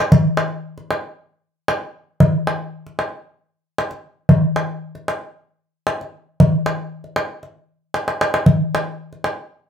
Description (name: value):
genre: arabic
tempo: free time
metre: none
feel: none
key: none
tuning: none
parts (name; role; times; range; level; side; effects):
- darbuka; percussion; 0.1-9.4 s; none; -16 LUFS; equal; none
room: moderate studio reverb, RT60 0.6 s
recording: band playing live in one room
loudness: -18 LUFS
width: side -8 dB against mid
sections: 0.0-8.5 A section; 8.5-9.7 A section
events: drum fill 7.9-8.5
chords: none